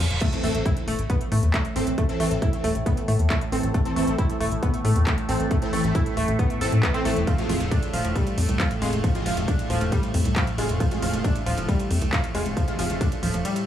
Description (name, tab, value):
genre	driving peak-time techno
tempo	136 BPM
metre	4/4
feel	straight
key	A harmonic minor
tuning	A4 = 440 Hz
part	analog pluck	riff	0.0-13.6 s	F3 to A4	-28 LUFS	equal	chorus, overdrive, sidechain pumping, digital delay
part	tight sequencer bass	bass	0.0-13.4 s	D#1 to A2	-24 LUFS	left 1 dB	sidechain pumping
part	reverse cymbal and impact	sound effects	0.0-2.0 s	none	-33 LUFS	right 1 dB	none
part	techno drum kit	drums	0.1-13.6 s	crash cymbal, handclaps, hi-hat, ride cymbal	-33 LUFS	right 1 dB	none
part	overtone-sweeping drone	drone	1.2-13.7 s	A2 to A3	-31 LUFS	right 2 dB	chorus, built-in reverb, sidechain pumping
part	electronic kick drum	drums	0.2-13.1 s	none	-25 LUFS	equal	none
part	rave stab	stabs	0.3-13.0 s	C3 to A4	-30 LUFS	equal	chorus, built-in reverb, sidechain pumping, digital delay
room	light reverb, digital ambience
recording	small room ambience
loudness	-21 LUFS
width	side -10 dB against mid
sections	0.2-13.7 A section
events	reverse cymbal 0.0; drop 0.2-13.7; impact 0.2-2.0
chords	0.2 Am; 7.3 Fm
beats	| 0.21 0.66 1.10 1.54 | 1.98 2.42 2.86 3.30 | 3.74 4.18 4.63 5.07 | 5.51 5.95 6.39 6.83 | 7.27 7.71 8.16 8.60 | 9.04 9.48 9.92 10.36 | 10.80 11.24 11.69 12.13 | 12.57 13.01 13.45